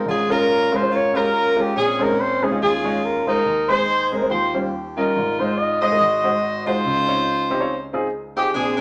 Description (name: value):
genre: gospel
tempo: 142 BPM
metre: 4/4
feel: swing 56% on 8ths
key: unclear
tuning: A4 = 440 Hz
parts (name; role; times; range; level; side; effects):
- warm horn section; melody; 0.0-8.8 s; C4 to Eb5; -21 LUFS; equal; none
- warm baby grand piano; accompaniment; 0.0-8.8 s; Ab1 to Eb5; -26 LUFS; equal; none
room: wet studio reverb, RT60 0.8 s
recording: none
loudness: -20 LUFS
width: mono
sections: 0.0-8.8 A section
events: none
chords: 0.1 Db6/Ab; 1.8 Bbm11; 2.6 Eb9sus4; 3.5 Ab/Eb; 4.3 Eb13; 5.2 Ab6; 6.0 Ab7; 6.8 Dbmaj9